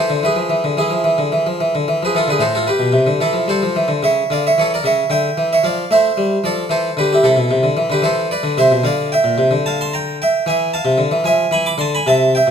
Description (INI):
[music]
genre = classical, baroque-style suite movement for harpsichord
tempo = 74 BPM (dotted quarters)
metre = 12/8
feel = rubato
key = A minor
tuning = A4 = 441 Hz
[part]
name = harpsichord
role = solo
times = 0.0-12.5 s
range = A2 to D6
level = -14 LUFS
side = equal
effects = none
[sound]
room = moderate recital hall reverb, RT60 1.7 s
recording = close, detailed microphones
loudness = -14 LUFS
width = side -7 dB against mid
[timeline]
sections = 0.0-12.5 A section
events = none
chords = 0.0 E; 0.8 E7; 2.4 Am; 4.0 A/C# (rootless); 5.6 Dm/F; 7.2 Am; 8.9 Bb; 10.5 E7